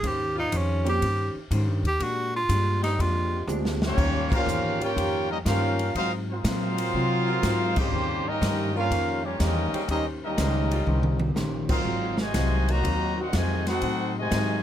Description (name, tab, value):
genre	jazz, big band swing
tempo	122 BPM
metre	4/4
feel	swing 68% on 8ths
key	Eb major from 4.0 s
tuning	A4 = 440 Hz
part	bright tenor saxophone	melody	0.0-3.5 s	Db4 to G4	-27 LUFS	right 1 dB	none
part	vintage hollow-body jazz guitar	accompaniment	0.0-14.6 s	Ab2 to C5	-33 LUFS	left 2 dB	none
part	upright bass	bass	0.0-14.6 s	Ab1 to C3	-27 LUFS	equal	none
part	swinging big-band drum kit	drums	0.0-14.5 s	crash cymbal, hi-hat, kick drum, ride cymbal, snare drum, toms	-31 LUFS	equal	none
part	warm saxophone section	sustained chords	0.4-13.3 s	C3 to C5	-35 LUFS	left 1 dB	none
part	warm concert grand piano	accompaniment	0.8-3.8 s	Ab3 to G4	-31 LUFS	right 5 dB	none
part	clear trombone section	second line	3.8-14.6 s	C3 to G4	-30 LUFS	right 1 dB	none
part	clear trumpet section	melody	3.9-14.6 s	Bb3 to Bb5	-29 LUFS	left 1 dB	none
room	light reverb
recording	none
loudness	-23 LUFS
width	side -10 dB against mid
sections	0.0-4.0 A section; 4.0-14.6 B section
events	tenor saxophone solo 0.0-4.0; drum fill 3.5-4.0, 10.9-11.4; band accent 4.2, 7.7, 11.6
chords	0.0 Eb13; 2.0 Bb13; 4.0 Eb13; 6.0 Ab13; 7.9 Eb13; 11.9 Ab13; 13.8 Adim7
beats	| 0.03 0.53 1.02 1.51 | 2.01 2.50 2.99 3.49 | 3.98 4.47 4.97 5.46 | 5.95 6.45 6.94 7.43 | 7.92 8.42 8.91 9.40 | 9.89 10.38 10.88 11.37 | 11.86 12.35 12.84 13.34 | 13.83 14.32